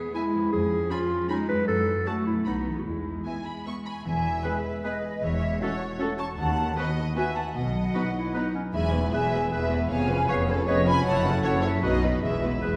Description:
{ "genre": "cinematic", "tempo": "154 BPM", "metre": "3/4", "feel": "straight", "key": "E major", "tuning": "A4 = 440 Hz", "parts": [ { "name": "clear clarinet", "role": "second line", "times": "0.0-12.8 s", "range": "C#4 to B4", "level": "-34 LUFS", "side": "equal", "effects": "none" }, { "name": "concert harp", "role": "arpeggios", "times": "0.0-12.8 s", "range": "E2 to G#5", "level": "-36 LUFS", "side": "equal", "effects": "none" }, { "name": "warm studio cello section", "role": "bass", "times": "0.0-12.8 s", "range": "D#2 to B3", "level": "-34 LUFS", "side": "equal", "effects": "none" }, { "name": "warm studio violin section", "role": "melody", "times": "0.1-12.8 s", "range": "A4 to C#6", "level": "-37 LUFS", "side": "equal", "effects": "none" }, { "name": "dark studio viola section", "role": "accompaniment", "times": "0.1-12.8 s", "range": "G#3 to G#4", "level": "-36 LUFS", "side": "equal", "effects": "none" }, { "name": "rich studio violin section", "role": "second line", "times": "0.2-12.8 s", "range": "A4 to A5", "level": "-40 LUFS", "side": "equal", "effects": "none" }, { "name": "warm studio double bass section", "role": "bass", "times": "0.5-12.8 s", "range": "E1 to F#2", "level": "-34 LUFS", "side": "equal", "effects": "none" }, { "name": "mellow flute section", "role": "second line", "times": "3.9-12.8 s", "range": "C#5 to C#6", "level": "-33 LUFS", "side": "equal", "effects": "none" }, { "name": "warm oboe", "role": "second line", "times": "4.4-12.8 s", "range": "A4 to C#5", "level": "-39 LUFS", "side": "equal", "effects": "none" }, { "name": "mellow French horn section", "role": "sustained chords", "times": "4.5-12.8 s", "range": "G#3 to B4", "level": "-39 LUFS", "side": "equal", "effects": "none" } ], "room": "wet concert hall reverb, RT60 1.9 s", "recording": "heard from further back in the room", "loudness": "-26 LUFS", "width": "mono", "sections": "0.0-4.1 A section; 4.1-12.8 A section", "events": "none", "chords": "0.0 E; 0.5 C#7/E#; 1.7 F#m7; 2.5 B; 2.9 E; 5.2 F#m7/E; 6.4 B7/D#; 7.6 B; 8.7 E; 9.9 C#7/E#; 11.1 F#m7; 11.8 B; 12.2 E", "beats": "0.14 | 0.53 0.91 1.29 | 1.68 2.07 2.46 | 2.86 3.26 3.66 | 4.06 4.45 4.84 | 5.23 5.61 6.00 | 6.38 6.77 7.16 | 7.55 7.95 8.34 | 8.74 9.13 9.52 | 9.90 10.29 10.67 | 11.06 11.44 11.83 | 12.23 12.64" }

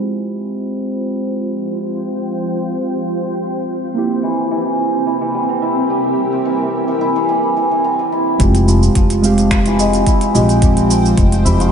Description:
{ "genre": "organic downtempo", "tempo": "108 BPM", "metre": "4/4", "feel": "swing 53% on 16ths", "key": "F harmonic minor", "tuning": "A4 = 438 Hz", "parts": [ { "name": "muted felt-like synth keys", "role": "accompaniment", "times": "0.0-11.7 s", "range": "F3 to F5", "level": "-19 LUFS", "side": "right 2 dB", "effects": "chorus, sidechain pumping, low-pass filter, ping-pong delay" }, { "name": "granular cloud pad", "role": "sustained chords", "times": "0.9-11.7 s", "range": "C4 to G5", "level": "-23 LUFS", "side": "right 1 dB", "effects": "built-in reverb, sidechain pumping" }, { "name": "santur", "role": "arpeggios", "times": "0.0-11.7 s", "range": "E3 to E4", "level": "-18 LUFS", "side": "left 1 dB", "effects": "ping-pong delay" }, { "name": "bronze singing bowl", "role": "texture", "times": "0.0-7.3 s", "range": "C4 to C5", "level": "-28 LUFS", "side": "left 2 dB", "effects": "none" }, { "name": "upright bass", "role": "bass", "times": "8.4-11.7 s", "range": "F1 to Bb1", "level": "-16 LUFS", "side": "equal", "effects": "none" }, { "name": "electronic kick drum", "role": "drums", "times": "8.4-11.3 s", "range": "none", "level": "-15 LUFS", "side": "equal", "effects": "none" }, { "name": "organic electronic drum kit", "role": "drums", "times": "8.4-11.7 s", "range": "cabasa, finger snaps, hi-hat", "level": "-24 LUFS", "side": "right 3 dB", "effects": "low-pass filter on perc, low-pass filter on snare, low-pass filter on hats, low-pass filter on room" }, { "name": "udu", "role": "percussion", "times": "8.4-11.6 s", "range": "none", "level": "-20 LUFS", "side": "equal", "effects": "none" } ], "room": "wet concert hall reverb, RT60 2.2 s", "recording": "big arena sound, low-pass filter, nothing above 10.9 kHz", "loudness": "-14 LUFS", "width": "side -7 dB against mid", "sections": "0.0-8.4 A section; 8.4-11.7 B section", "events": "filter sweep on drum 0.0-8.4; filter sweep on synth keys 0.0-8.4; filter sweep on ambient pad 0.0-8.4; filter sweep 0.0-8.4", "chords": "0.0 Fmadd9; 4.0 C7; 8.4 Fmadd9", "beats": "0.07 0.62 1.18 | 1.73 2.29 2.84 3.40 | 3.96 4.51 5.07 5.62 | 6.18 6.73 7.29 7.84 | 8.40 8.96 9.51 10.07 | 10.62 11.18" }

